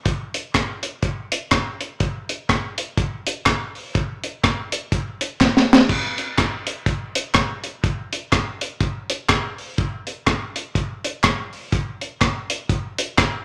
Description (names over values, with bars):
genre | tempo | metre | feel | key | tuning
ska | 123 BPM | 4/4 | swing 59% on 8ths | none | none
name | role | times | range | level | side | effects
deep reggae drum kit | drums | 0.1-13.3 s | crash cymbal, hi-hat, kick drum, rim click, snare drum | -21 LUFS | equal | none
group handclap | percussion | 0.5-13.3 s | none | -31 LUFS | equal | dub echo
room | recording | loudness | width
moderate large studio reverb, RT60 0.9 s | none | -22 LUFS | mono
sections
0.0-5.9 A section; 5.9-13.4 A section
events
drum fill 5.4-5.9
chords
none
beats
| 0.06 0.54 1.03 1.52 | 2.00 2.49 2.98 3.46 | 3.95 4.43 4.92 5.41 | 5.89 6.38 6.87 7.35 | 7.84 8.32 8.81 9.29 | 9.78 10.27 10.75 11.24 | 11.73 12.21 12.70 13.19